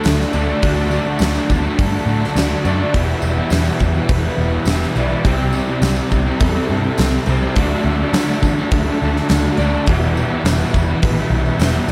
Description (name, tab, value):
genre	rock, shoegaze and dream pop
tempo	104 BPM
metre	4/4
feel	straight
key	unclear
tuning	A4 = 440 Hz
part	picked twelve-string acoustic guitar	arpeggios	0.0-11.9 s	F#4 to D5	-30 LUFS	equal	analog chorus, slapback echo
part	crunchy overdriven guitar	riff	0.0-11.9 s	C3 to E4	-26 LUFS	equal	reverse reverb
part	raw garage guitar	riff	0.0-11.9 s	E2 to D4	-26 LUFS	equal	overdrive, harmonic tremolo
part	thick fuzz guitar	riff	0.0-11.9 s	E2 to D4	-25 LUFS	equal	distortion, ensemble chorus
part	huge arena drum kit	drums	0.0-11.7 s	hi-hat, kick drum, snare drum	-23 LUFS	equal	none
part	tambourine	percussion	0.0-11.9 s	none	-40 LUFS	equal	none
part	vintage muted picked electric bass	bass	0.1-11.9 s	E1 to D3	-22 LUFS	equal	none
room	light reverb, small room ambience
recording	none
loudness	-17 LUFS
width	mono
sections	0.0-11.9 A section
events	none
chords	0.0 D; 2.9 Em7; 5.3 C; 7.6 D; 9.9 Em